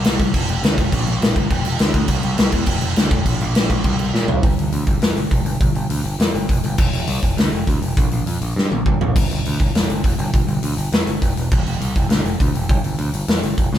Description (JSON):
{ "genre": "punk rock", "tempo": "204 BPM", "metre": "4/4", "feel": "straight", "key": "unclear", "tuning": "A4 = 437 Hz", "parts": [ { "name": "growling picked electric bass", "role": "bass", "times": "0.0-13.8 s", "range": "E1 to Bb2", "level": "-21 LUFS", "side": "equal", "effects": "overdrive" }, { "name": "big rock drum kit", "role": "drums", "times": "0.0-13.8 s", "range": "crash cymbal, hi-hat, kick drum, snare drum, toms", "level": "-18 LUFS", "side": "equal", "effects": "none" } ], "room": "light reverb", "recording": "band playing live in one room", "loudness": "-16 LUFS", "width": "side -11 dB against mid", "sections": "0.0-4.4 A section; 4.4-13.8 B section", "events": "drum fill 4.1, 8.6-9.2; half time 4.4-13.8", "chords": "none", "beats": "0.05 0.34 0.63 | 0.92 1.21 1.50 1.79 | 2.09 2.38 2.67 2.96 | 3.26 3.55 3.84 4.14 | 4.43 4.73 5.02 5.32 | 5.61 5.91 6.20 6.50 | 6.79 7.09 7.38 7.68 | 7.97 8.27 8.56 8.86 | 9.16 9.45 9.75 10.04 | 10.34 10.63 10.93 11.22 | 11.52 11.81 12.11 12.40 | 12.70 12.99 13.28 13.58" }